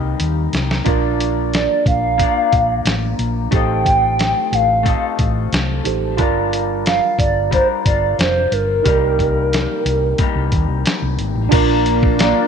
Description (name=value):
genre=indie pop, bedroom pop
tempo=90 BPM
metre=4/4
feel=straight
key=Bb major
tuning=A4 = 440 Hz
part: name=hollow clarinet-like synth lead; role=melody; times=0.0-12.5 s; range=Bb4 to G5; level=-18 LUFS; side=right 1 dB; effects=analog chorus, slapback echo
part: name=electric guitar through a small old amp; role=accompaniment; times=0.0-12.5 s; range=C3 to Eb5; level=-23 LUFS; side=left 13 dB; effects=lush chorus, warbly pitch drift
part: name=tine electric piano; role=accompaniment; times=0.0-12.5 s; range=D4 to A5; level=-24 LUFS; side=right 12 dB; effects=cassette tape
part: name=hollow-body short-scale fingered electric bass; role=bass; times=0.0-12.3 s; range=F1 to Eb2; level=-21 LUFS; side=equal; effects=none
part: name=dusty soul sampler-style drum kit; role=drums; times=0.2-12.4 s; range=crash cymbal, hi-hat, kick drum, snare drum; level=-19 LUFS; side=equal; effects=none
part: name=phased analog pad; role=sustained chords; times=11.5-12.5 s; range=Bb3 to F4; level=-21 LUFS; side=right 1 dB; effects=phaser, chorus
room=light reverb, digital ambience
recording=1960s-style stereo with parts hard left and right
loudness=-14 LUFS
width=side -7 dB against mid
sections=0.0-11.5 A section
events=drum fill 0.2-0.9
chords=0.0 Cm7; 0.9 Bb; 3.5 F7/A; 6.2 Gm7; 8.9 Cm7; 11.5 Bb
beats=0.19 | 0.86 1.53 2.19 2.86 | 3.53 4.19 4.86 5.53 | 6.19 6.86 7.53 8.19 | 8.86 9.53 10.19 10.86 | 11.53 12.19